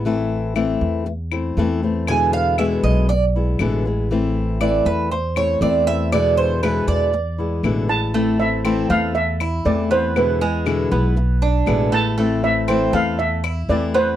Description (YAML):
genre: latin, Cuban son and guajira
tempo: 119 BPM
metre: 4/4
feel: straight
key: A minor, A harmonic minor from 8.1 s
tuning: A4 = 440 Hz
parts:
  - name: fingerpicked old ladder-braced acoustic guitar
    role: accompaniment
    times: 0.0-14.2 s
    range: B2 to E4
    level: -21 LUFS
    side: left 4 dB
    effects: none
  - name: upright bass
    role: bass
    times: 0.0-14.2 s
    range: A1 to E2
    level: -22 LUFS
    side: equal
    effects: none
  - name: claves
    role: percussion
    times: 0.6-13.7 s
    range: none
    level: -28 LUFS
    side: left 17 dB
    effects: none
  - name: Cuban tres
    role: arpeggios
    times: 2.1-14.2 s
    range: G#3 to G#5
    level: -22 LUFS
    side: right 5 dB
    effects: none
  - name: steel pan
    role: melody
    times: 7.9-14.2 s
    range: B4 to A5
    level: -21 LUFS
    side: right 2 dB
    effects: none
room: light reverb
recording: dry, close 1970s-style studio recording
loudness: -17 LUFS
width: side -11 dB against mid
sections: 0.0-8.1 A section; 8.1-14.2 B section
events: Cuban tres solo 0.0-8.1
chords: 0.1 Am; 2.1 E7; 4.1 Am; 6.1 E7; 8.1 Am; 10.2 E7; 12.2 Am